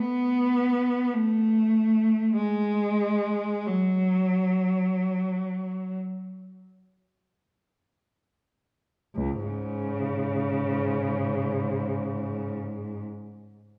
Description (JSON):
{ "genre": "classical, free, expressive piece for unaccompanied cello", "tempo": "free time", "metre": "none", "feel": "none", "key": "unclear", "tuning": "A4 = 440 Hz", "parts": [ { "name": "clear cello", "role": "solo", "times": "0.0-13.0 s", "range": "C#2 to B3", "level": "-27 LUFS", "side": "equal", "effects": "none" } ], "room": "wet recital hall reverb, RT60 1.6 s", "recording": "none", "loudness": "-26 LUFS", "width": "mono", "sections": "0.0-9.2 A section; 9.2-13.8 B section", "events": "slowing down 0.0-9.2", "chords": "none" }